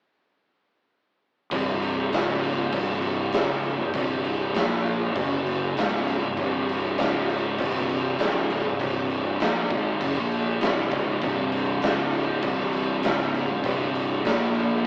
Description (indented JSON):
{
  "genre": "stoner and doom metal",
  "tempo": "99 BPM",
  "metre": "4/4",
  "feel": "straight",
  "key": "unclear",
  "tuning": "A4 = 439 Hz",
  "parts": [
    { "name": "thick fuzz guitar", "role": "riff", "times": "1.5-14.9 s", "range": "C2 to Bb3", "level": "-33 LUFS", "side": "equal", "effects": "distortion" },
    { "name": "thick fuzz guitar", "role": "riff", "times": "1.5-14.9 s", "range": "C2 to Bb3", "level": "-32 LUFS", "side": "equal", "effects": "distortion" },
    { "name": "fuzz fingered electric bass", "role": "bass", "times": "1.5-14.8 s", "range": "C1 to Bb1", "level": "-32 LUFS", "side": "equal", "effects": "overdrive" },
    { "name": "big rock drum kit", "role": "drums", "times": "1.5-14.7 s", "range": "crash cymbal, kick drum, snare drum", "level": "-29 LUFS", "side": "equal", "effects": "none" }
  ],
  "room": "light reverb",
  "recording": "rough rehearsal-room recording, tube saturation, AM radio sound",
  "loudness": "-25 LUFS",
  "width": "mono",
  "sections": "1.5-14.9 A section",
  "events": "none",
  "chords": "1.5 C5; 2.1 Db5; 2.7 C5; 4.5 Bb5; 5.2 F#5; 5.8 C5; 7.0 Db5; 7.6 Cm; 11.8 Db5; 12.4 C5; 14.2 Bb5"
}